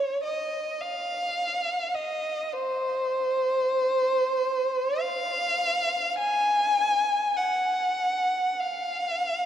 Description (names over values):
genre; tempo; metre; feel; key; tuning
classical, free, expressive piece for unaccompanied violin; free time; none; none; unclear; A4 = 440 Hz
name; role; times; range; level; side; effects
warm violin; solo; 0.0-9.5 s; C5 to Ab5; -24 LUFS; equal; none
room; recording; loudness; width
wet cathedral reverb, RT60 4.6 s; dark, warm production; -24 LUFS; side -10 dB against mid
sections
0.0-9.5 A section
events
none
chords
none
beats
free time